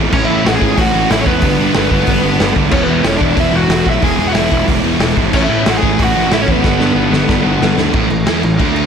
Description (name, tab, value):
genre	punk rock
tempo	184 BPM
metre	4/4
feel	straight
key	A major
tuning	A4 = 440 Hz
part	overdriven semi-hollow guitar	riff	0.0-8.9 s	G2 to E4	-18 LUFS	right 13 dB	none
part	sludgy distorted guitar	riff	0.0-8.9 s	E2 to E4	-19 LUFS	left 12 dB	overdrive
part	thick fuzz guitar	riff	0.0-8.9 s	G2 to E4	-21 LUFS	equal	none
part	fuzz picked electric bass	bass	0.0-8.9 s	E1 to A2	-19 LUFS	equal	overdrive
part	biting lead guitar	melody	0.1-7.8 s	B3 to G#5	-17 LUFS	equal	overdrive, digital delay
part	raw garage drum kit	drums	0.1-8.8 s	crash cymbal, hi-hat, kick drum, snare drum	-16 LUFS	equal	none
room	light reverb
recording	none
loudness	-11 LUFS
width	side -7 dB against mid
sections	0.0-7.9 A section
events	drum fill 6.6-7.9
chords	0.1 A; 1.4 G; 2.7 E; 5.3 A; 6.6 G; 7.9 A5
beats	| 0.11 0.44 0.76 1.09 | 1.42 1.74 2.07 2.39 | 2.72 3.04 3.37 3.70 | 4.02 4.35 4.67 5.00 | 5.33 5.65 5.98 6.30 | 6.63 6.96 7.28 7.61 | 7.94 8.26 8.59